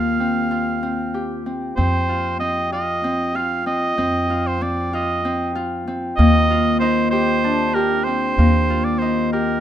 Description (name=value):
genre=contemporary instrumental, contemporary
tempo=191 BPM (eighths)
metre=7/8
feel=straight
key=unclear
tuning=A4 = 440 Hz
part: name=warm oboe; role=melody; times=0.0-9.6 s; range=Bb4 to F5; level=-22 LUFS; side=right 3 dB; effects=none
part: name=Celtic harp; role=arpeggios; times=0.0-9.6 s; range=Bb3 to G4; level=-20 LUFS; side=left 2 dB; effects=none
part: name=upright bass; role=bass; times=0.0-9.6 s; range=Eb2 to F2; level=-24 LUFS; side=equal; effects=none
room=light reverb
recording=close, detailed microphones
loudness=-17 LUFS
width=side -10 dB against mid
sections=0.0-1.8 A section; 1.8-9.6 B section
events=none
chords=0.0 Eb69; 1.8 F5; 6.2 Eb